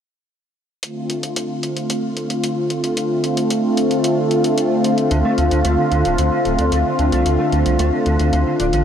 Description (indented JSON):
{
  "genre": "synthwave",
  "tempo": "112 BPM",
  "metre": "4/4",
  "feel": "straight",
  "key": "D minor",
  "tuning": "A4 = 441 Hz",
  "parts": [
    { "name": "warm analog pad", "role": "sustained chords", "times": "0.8-8.8 s", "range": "D3 to F4", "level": "-17 LUFS", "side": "equal", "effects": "chorus, shimmer reverb" },
    { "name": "electronic hi-hat", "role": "drums", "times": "0.8-8.8 s", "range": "none", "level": "-28 LUFS", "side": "left 1 dB", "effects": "none" },
    { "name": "mellow electric guitar", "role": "riff", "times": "5.1-8.8 s", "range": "D3 to D4", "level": "-24 LUFS", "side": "right 3 dB", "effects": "ensemble chorus, diffuse ambient delay, shimmer reverb" },
    { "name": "round analog bass", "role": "bass", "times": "5.1-8.8 s", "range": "D1 to D2", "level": "-19 LUFS", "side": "equal", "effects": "none" }
  ],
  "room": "wet huge ambient reverb, RT60 7.4 s",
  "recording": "dreamy mix soaked in reverb",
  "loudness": "-16 LUFS",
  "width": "side -8 dB against mid",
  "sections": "0.8-8.8 A section",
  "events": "none",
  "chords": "0.8 Dm7"
}